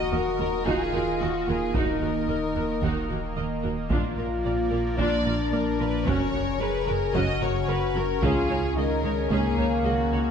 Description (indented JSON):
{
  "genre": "cinematic, hybrid orchestral and electronic film score",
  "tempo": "111 BPM",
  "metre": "4/4",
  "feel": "straight",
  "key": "Eb minor",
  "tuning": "A4 = 438 Hz",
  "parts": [
    { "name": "warm symphonic violin section", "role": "second line", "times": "0.0-10.3 s", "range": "Gb4 to Eb5", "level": "-31 LUFS", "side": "left 3 dB", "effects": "none" },
    { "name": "mellow French horn section", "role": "sustained chords", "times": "0.0-10.3 s", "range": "Bb3 to Ab4", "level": "-28 LUFS", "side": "left 3 dB", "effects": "none" },
    { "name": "phased analog pad", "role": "sustained chords", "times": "0.0-10.3 s", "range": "Db3 to Eb5", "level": "-31 LUFS", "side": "right 1 dB", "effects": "phaser, chorus" },
    { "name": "warm sub bass", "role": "bass", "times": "0.0-10.3 s", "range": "Eb1 to Db2", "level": "-33 LUFS", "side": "equal", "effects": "none" },
    { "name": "rich symphonic viola section", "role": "accompaniment", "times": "0.1-10.2 s", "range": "Db4 to Eb5", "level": "-32 LUFS", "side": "right 2 dB", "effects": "none" },
    { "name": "rich chamber double bass section", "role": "bass", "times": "0.1-10.2 s", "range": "Gb1 to Eb2", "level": "-34 LUFS", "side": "right 4 dB", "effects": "none" },
    { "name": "rich symphonic cello section", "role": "bass", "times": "0.1-10.2 s", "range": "Db2 to Bb2", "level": "-34 LUFS", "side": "right 4 dB", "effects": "none" },
    { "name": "taiko ensemble", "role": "drums", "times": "0.7-9.8 s", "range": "none", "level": "-32 LUFS", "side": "equal", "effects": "none" }
  ],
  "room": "moderate scoring stage reverb, RT60 1.7 s",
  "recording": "none",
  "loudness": "-23 LUFS",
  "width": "side -7 dB against mid",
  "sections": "0.0-10.3 A section",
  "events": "none",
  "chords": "0.0 Ebm; 3.9 Bb; 6.1 Gb; 8.2 Dbsus2"
}